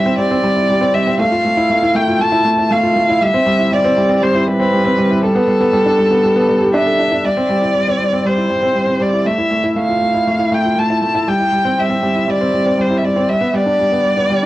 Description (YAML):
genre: electronica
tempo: 119 BPM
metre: 4/4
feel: straight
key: unclear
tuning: A4 = 441 Hz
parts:
  - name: rich violin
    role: melody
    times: 0.0-14.5 s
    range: A4 to A5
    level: -15 LUFS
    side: equal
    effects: cassette tape
  - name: felt-muted upright piano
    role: riff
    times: 0.0-14.5 s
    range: G3 to A4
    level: -15 LUFS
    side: equal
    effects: cassette tape
room: wet studio reverb, RT60 0.6 s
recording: home recording on cassette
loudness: -12 LUFS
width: side -16 dB against mid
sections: 0.0-7.2 A section; 7.2-14.5 B section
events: none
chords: 0.0 Cadd9/G; 1.2 Fmaj7; 3.2 Cmaj7; 5.2 Gadd9; 7.2 Gsus4; 9.3 Fmaj7; 11.3 C; 13.3 G